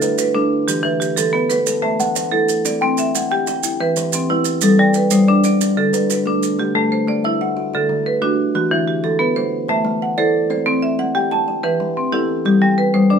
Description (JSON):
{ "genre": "southern african traditional, mbira-style interlocking cycle", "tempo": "122 BPM (dotted quarters)", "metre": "12/8", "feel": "straight", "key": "A dorian", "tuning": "A4 = 440 Hz", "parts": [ { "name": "kalimba", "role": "arpeggios", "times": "0.0-13.2 s", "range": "D3 to G5", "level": "-18 LUFS", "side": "left 3 dB", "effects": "none" }, { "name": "marimba with medium hard mallets", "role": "arpeggios", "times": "0.0-13.2 s", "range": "D3 to A5", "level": "-18 LUFS", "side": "right 3 dB", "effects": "none" }, { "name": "maracas", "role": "percussion", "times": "0.0-6.6 s", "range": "none", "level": "-24 LUFS", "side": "right 9 dB", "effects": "none" } ], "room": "moderate studio reverb, RT60 0.6 s", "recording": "minimal, uncompressed stereo recording", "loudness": "-15 LUFS", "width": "side -7 dB against mid", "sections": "0.0-6.6 A section; 6.6-13.2 B section", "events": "none", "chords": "0.0 D; 0.7 Em; 1.7 Am; 2.7 C; 3.6 Em; 4.6 G; 5.6 D; 6.6 Am; 7.6 D; 8.5 Em; 9.5 Am; 10.5 C; 11.5 Em; 12.5 G", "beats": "0.19 | 0.69 1.18 1.67 2.17 | 2.66 3.15 3.64 4.13 | 4.62 5.12 5.61 6.10 | 6.59 7.08 7.57 8.06 | 8.55 9.04 9.53 10.01 | 10.50 10.99 11.48 11.97 | 12.46 12.95" }